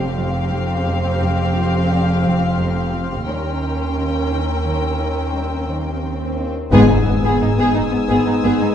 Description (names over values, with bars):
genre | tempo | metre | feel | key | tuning
cinematic, suspense film score | 87 BPM | 5/4 | straight | unclear | A4 = 440 Hz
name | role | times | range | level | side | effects
warm chamber violin section | melody | 0.0-8.7 s | F5 to G#5 | -28 LUFS | left 5 dB | none
warm symphonic violin section | second line | 0.0-8.7 s | B3 to A#4 | -26 LUFS | left 1 dB | none
dark symphonic viola section | accompaniment | 0.0-8.7 s | B3 to C#4 | -23 LUFS | right 1 dB | none
mellow French horn section | sustained chords | 0.0-8.7 s | G3 to D#4 | -23 LUFS | left 7 dB | none
warm symphonic cello section | riff | 0.0-8.6 s | F2 to D#4 | -26 LUFS | right 1 dB | none
rich studio double bass section | bass | 0.0-8.5 s | F1 to D#2 | -24 LUFS | right 1 dB | none
rich symphonic cello section | bass | 0.0-8.7 s | D#2 to G#2 | -23 LUFS | right 1 dB | none
warm symphonic violin section | texture | 0.0-8.7 s | C6 to F6 | -33 LUFS | left 4 dB | none
swell and impact | sound effects | 5.6-8.7 s | none | -28 LUFS | left 1 dB | none
warm trombone section | sustained chords | 6.7-8.7 s | G#2 to G#3 | -23 LUFS | equal | none
timpani | percussion | 6.7-7.7 s | G#2 | -23 LUFS | left 4 dB | none
room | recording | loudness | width
moderate recital hall reverb, RT60 1.3 s | dark, warm production, nothing above 10.3 kHz | -16 LUFS | side -9 dB against mid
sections
0.0-6.7 A section; 6.7-8.7 B section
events
swell 5.6-6.7; band accent 6.7-7.4; impact 6.7-8.7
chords
0.0 Fsus2; 3.3 D#7; 6.7 G#m